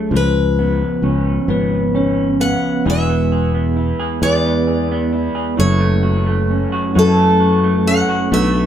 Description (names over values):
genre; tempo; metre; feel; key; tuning
acoustic folk-pop ballad; 44 BPM (dotted quarters); 6/8; straight; F# minor; A4 = 436 Hz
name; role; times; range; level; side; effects
picked steel-string acoustic guitar; melody; 0.0-8.7 s; A4 to F#5; -20 LUFS; left 1 dB; none
bell-like tine electric piano; accompaniment; 0.0-8.7 s; F#1 to E#5; -21 LUFS; left 3 dB; none
electric guitar through a small old amp; arpeggios; 0.0-8.7 s; E3 to G#4; -20 LUFS; right 3 dB; harmonic tremolo
sustaining fretless electric bass; bass; 0.1-8.7 s; E1 to F#2; -17 LUFS; equal; none
room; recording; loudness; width
moderate stone room reverb, RT60 1.0 s; band playing live in one room; -14 LUFS; side -10 dB against mid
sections
0.0-2.9 A section; 2.9-8.7 B section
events
none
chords
0.1 C#7; 2.9 E; 5.6 F#m7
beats
| 0.12 1.49 | 2.86 4.23 | 5.60 6.96 | 8.33